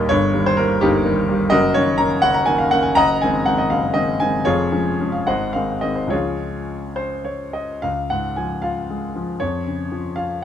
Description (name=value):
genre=classical, romantic character piece for solo piano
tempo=66-85 BPM (dotted quarters)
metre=6/8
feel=rubato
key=Db major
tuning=A4 = 442 Hz
part: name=clear grand piano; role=solo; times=0.0-10.4 s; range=Eb1 to Bb5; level=-17 LUFS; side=equal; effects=none
room=light reverb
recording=dark, warm production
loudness=-17 LUFS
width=side -9 dB against mid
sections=0.0-7.8 A section; 7.8-10.4 B section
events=none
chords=0.1 Eb/G; 1.5 Ebm7/Gb; 3.0 Ab7/Gb; 4.5 Db/F; 5.3 Ab; 6.1 Db; 9.4 Db/F